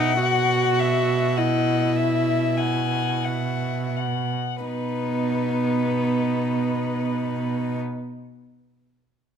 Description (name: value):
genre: classical, slow romantic movement for string quartet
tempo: 40-53 BPM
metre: 4/4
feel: rubato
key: B major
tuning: A4 = 440 Hz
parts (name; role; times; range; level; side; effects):
- dark violin; melody; 0.0-7.8 s; B4 to F#5; -30 LUFS; left 11 dB; none
- rich violin; second line; 0.0-7.8 s; D#4 to G#5; -28 LUFS; left 6 dB; none
- warm viola; accompaniment; 0.0-7.8 s; B3 to F#4; -25 LUFS; right 1 dB; none
- warm cello; bass; 0.0-7.8 s; B2; -26 LUFS; right 5 dB; none
room: light reverb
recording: close, detailed microphones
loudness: -21 LUFS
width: side -8 dB against mid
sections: 0.0-4.6 A section; 4.6-9.4 B section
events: slowing down 0.0-4.6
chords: 0.0 Bsus4; 4.6 B